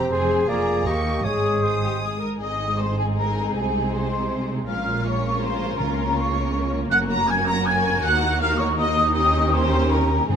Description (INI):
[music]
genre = classical, dramatic, fast romantic movement for symphony orchestra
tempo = 160 BPM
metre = 3/4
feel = straight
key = Ab major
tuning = A4 = 440 Hz
[part]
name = warm symphonic violin section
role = melody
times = 0.0-10.4 s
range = Ab4 to Eb6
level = -30 LUFS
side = left 2 dB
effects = none
[part]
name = mellow hollow large flute ensemble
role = second line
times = 0.0-10.4 s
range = Ab5 to Ab6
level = -24 LUFS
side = left 1 dB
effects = none
[part]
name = warm clarinet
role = second line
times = 0.0-2.2 s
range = G4 to Ab4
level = -29 LUFS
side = right 1 dB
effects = none
[part]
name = warm symphonic violin section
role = second line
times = 0.0-10.4 s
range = Eb4 to Bb4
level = -30 LUFS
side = left 2 dB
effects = none
[part]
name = mellow bassoon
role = accompaniment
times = 0.0-2.2 s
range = Ab3 to C4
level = -29 LUFS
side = right 2 dB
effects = none
[part]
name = warm symphonic viola section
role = accompaniment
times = 0.0-10.4 s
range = Ab3 to Eb4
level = -29 LUFS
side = equal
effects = none
[part]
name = rich symphonic double bass section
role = bass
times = 0.0-10.4 s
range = F1 to Eb2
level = -27 LUFS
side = right 2 dB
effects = none
[part]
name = warm symphonic cello section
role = bass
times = 0.0-10.4 s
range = Eb2 to Db3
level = -28 LUFS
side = right 3 dB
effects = none
[part]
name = warm oboe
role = second line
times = 0.1-2.0 s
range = C5 to Eb5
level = -30 LUFS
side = right 1 dB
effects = none
[part]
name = mellow French horn section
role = sustained chords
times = 0.1-2.2 s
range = F4 to Ab4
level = -28 LUFS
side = left 6 dB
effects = none
[part]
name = timpani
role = percussion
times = 5.8-6.3, 10.3-10.4 s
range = Ab2 to Db3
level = -31 LUFS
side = left 2 dB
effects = none
[sound]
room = light reverb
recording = close, detailed microphones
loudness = -19 LUFS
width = side -7 dB against mid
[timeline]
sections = 0.0-2.4 A section; 2.4-10.4 A section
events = none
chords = 0.1 Fm; 0.5 Bb7/F; 0.9 Eb7; 1.2 Ab; 3.5 Ab/C; 4.7 Bbm7; 5.8 Bbm/Db; 6.9 Gb; 8.0 Ebm; 9.2 Eb7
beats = | 0.11 0.48 0.86 | 1.25 1.64 2.03 | 2.41 2.79 3.17 | 3.55 3.93 4.30 | 4.68 5.05 5.42 | 5.80 6.17 6.54 | 6.91 7.29 7.66 | 8.04 8.41 8.78 | 9.15 9.53 9.91 | 10.30